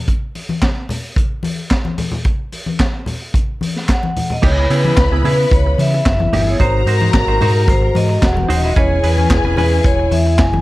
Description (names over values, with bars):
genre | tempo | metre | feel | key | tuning
disco | 111 BPM | 4/4 | straight | C# dorian | A4 = 441 Hz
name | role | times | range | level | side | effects
vintage drum kit | drums | 0.1-10.5 s | crash cymbal, handclaps, hi-hat, kick drum, snare drum | -18 LUFS | equal | none
congas | percussion | 0.1-10.6 s | none | -23 LUFS | left 3 dB | none
vibraphone with medium hard mallets | melody | 3.9-10.6 s | A#4 to G#5 | -20 LUFS | equal | none
warm studio string section | second line | 4.4-10.6 s | G#3 to B5 | -22 LUFS | left 3 dB | none
semi-hollow electric guitar | accompaniment | 4.4-10.6 s | B3 to B#4 | -23 LUFS | right 6 dB | tremolo
mellow French horn section | sustained chords | 4.4-10.6 s | B#2 to F#4 | -24 LUFS | left 2 dB | none
overdriven fingered electric bass | bass | 4.4-10.6 s | D#1 to C#3 | -16 LUFS | equal | none
room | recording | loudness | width
light reverb, small room ambience | dark, warm production | -13 LUFS | side -18 dB against mid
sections
0.0-4.4 A section; 4.4-10.6 B section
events
none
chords
0.0 N.C.; 4.4 C#m7; 6.6 G#7; 8.8 E6